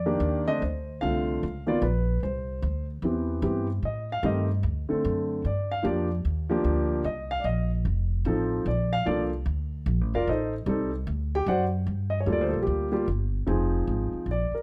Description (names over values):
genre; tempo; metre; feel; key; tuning
jazz piano trio; 149 BPM; 4/4; swing 64% on 8ths; G minor; A4 = 441 Hz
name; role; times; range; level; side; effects
warm grand piano; melody; 0.0-14.6 s; D3 to G5; -29 LUFS; equal; none
upright bass; bass; 0.0-14.5 s; F1 to A2; -30 LUFS; equal; none
room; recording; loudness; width
light reverb; none; -27 LUFS; mono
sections
0.0-11.9 A section; 11.9-14.6 B section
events
grand piano solo 11.9-14.6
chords
0.0 Ebmaj7; 0.6 Dm7; 1.4 C#13; 2.2 Cmaj7; 3.8 Am7b5; 4.6 D7; 5.4 Gm7; 7.0 Bbsus24; 7.8 F7; 8.7 Bb; 10.3 Am7b5; 11.1 D; 11.9 Gm7; 13.5 Fm7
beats
0.21 | 0.62 1.02 1.42 1.82 | 2.22 2.63 3.03 3.43 | 3.83 4.23 4.64 5.04 | 5.44 5.84 6.24 6.64 | 7.05 7.45 7.85 8.25 | 8.65 9.05 9.46 9.86 | 10.26 10.66 11.06 11.46 | 11.87 12.27 12.67 13.07 | 13.47 13.87 14.27